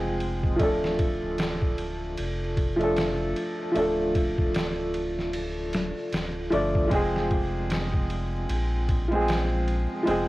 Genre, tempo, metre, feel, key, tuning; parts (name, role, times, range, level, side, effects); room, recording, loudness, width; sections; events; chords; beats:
trip hop; 76 BPM; 4/4; swing 59% on 16ths; A4 = 438 Hz
clear upright piano; accompaniment; 0.0-10.3 s; F3 to D5; -26 LUFS; equal; tremolo, low-pass filter, cassette tape, tape echo
round analog bass; bass; 0.0-10.3 s; D1 to Bb1; -31 LUFS; equal
trip hop sampler-style drum kit; drums; 0.2-10.3 s; kick drum, ride cymbal, snare drum; -30 LUFS; equal; studio reverb, cassette tape
digital ambience; home recording on cassette, vinyl crackle; -24 LUFS; side -18 dB against mid
0.0-10.3 A section
filter sweep on upright piano 0.0-10.3
0.0 Fm; 0.6 Dm; 6.9 Fm
| 0.59 1.39 2.17 2.96 | 3.75 4.54 5.33 6.12 | 6.91 7.70 8.49 9.28 | 10.07